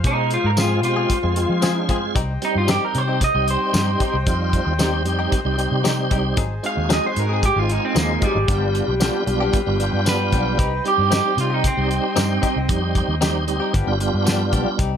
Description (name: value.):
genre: straight-eighth soul blues.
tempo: 114 BPM.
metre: 4/4.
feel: straight.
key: C harmonic minor.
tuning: A4 = 440 Hz.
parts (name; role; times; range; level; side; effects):
tonewheel organ; accompaniment; 0.0-14.8 s; G3 to C5; -24 LUFS; right 3 dB; slow rotary speaker, overdrive, chorus vibrato.
warm horn section; sustained chords; 0.0-14.8 s; Eb4 to Ab5; -31 LUFS; left 3 dB; none.
vintage muted fingered electric bass; bass; 0.0-15.0 s; G1 to F3; -23 LUFS; equal; none.
cloth-damped thuddy drum kit; drums; 0.0-14.9 s; hi-hat, kick drum, snare drum, tambourine; -22 LUFS; equal; none.
electric guitar through a small old amp; melody; 0.1-12.7 s; G3 to F5; -22 LUFS; right 1 dB; none.
direct-recorded clean electric guitar; stabs; 0.6-14.9 s; F3 to Ab4; -26 LUFS; left 6 dB; tremolo.
room: light reverb.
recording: none.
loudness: -17 LUFS.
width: side -8 dB against mid.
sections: 0.0-14.8 A section.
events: clean electric guitar solo 0.0-14.8.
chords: 0.0 Fm; 2.2 Cm; 6.4 Ab7; 8.5 G7; 10.6 Cm; 13.7 G7.